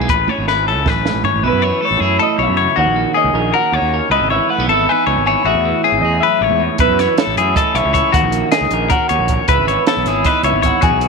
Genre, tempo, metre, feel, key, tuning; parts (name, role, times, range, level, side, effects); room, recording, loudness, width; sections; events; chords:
math rock and midwest emo; 313 BPM (eighths); 7/8; straight; A4 = 440 Hz
clean electric guitar; accompaniment; 0.0-11.1 s; E2 to A#4; -20 LUFS; right 13 dB; spring reverb
clean electric guitar; arpeggios; 0.0-11.1 s; F#4 to C#5; -16 LUFS; left 11 dB
fuzz fingered electric bass; bass; 0.0-11.1 s; G#1 to F#2; -21 LUFS; right 1 dB; overdrive
compact cocktail drum kit; drums; 0.1-1.3, 6.8-11.1 s; hi-hat, kick drum, snare drum, toms; -19 LUFS; right 4 dB
electric guitar through a small old amp; melody; 1.5-11.1 s; B4 to G#5; -19 LUFS; equal; lush chorus
moderate echo chamber reverb, RT60 1.7 s, small room ambience; 1960s-style stereo with parts hard left and right; -12 LUFS; side -4 dB against mid
0.0-1.4 A section; 1.4-11.1 B section
drum fill 0.3-1.4
0.1 Amaj7; 1.4 B9sus4; 2.8 D#m7; 4.1 C#m9; 5.4 Amaj7; 6.8 B9sus4; 8.1 D#m7; 9.5 C#m9